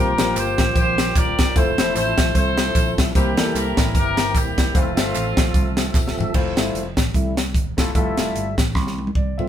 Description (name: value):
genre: uptempo gospel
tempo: 150 BPM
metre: 4/4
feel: swing 57% on 8ths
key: F major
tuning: A4 = 441 Hz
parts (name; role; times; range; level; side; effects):
- clear horn section; melody; 0.0-6.0 s; A3 to D5; -23 LUFS; equal; none
- warm baby grand piano; accompaniment; 0.0-9.5 s; C3 to G5; -25 LUFS; left 4 dB; none
- tonewheel organ; sustained chords; 0.0-9.5 s; E3 to E5; -28 LUFS; right 1 dB; slow rotary speaker
- fingered electric bass; bass; 0.0-9.5 s; Eb1 to E2; -26 LUFS; equal; none
- crisp fusion drum kit; drums; 0.2-9.5 s; crash cymbal, hi-hat, kick drum, snare drum, toms; -19 LUFS; equal; none
- tambourine and handclaps; percussion; 0.2-6.3 s; none; -35 LUFS; right 1 dB; none
room: light reverb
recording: band playing live in one room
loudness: -17 LUFS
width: side -10 dB against mid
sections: 0.0-6.3 A section; 6.3-9.5 B section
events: drum fill 5.9-6.3, 8.8-9.5; tonewheel organ solo 6.3-9.5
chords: 0.0 C7sus4; 1.6 Fmaj7; 3.2 C7; 4.7 Fmaj7